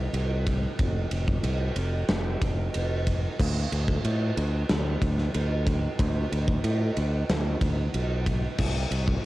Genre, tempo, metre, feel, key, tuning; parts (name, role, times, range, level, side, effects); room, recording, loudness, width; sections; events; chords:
hard rock; 92 BPM; 4/4; straight; A4 = 440 Hz
modern bright fingered electric bass; bass; 0.0-9.2 s; F1 to A2; -26 LUFS; equal
big rock drum kit; drums; 0.1-9.2 s; crash cymbal, kick drum, ride cymbal, snare drum; -28 LUFS; equal
little or no reverb; home recording on cassette; -24 LUFS; side -17 dB against mid
0.0-9.3 A section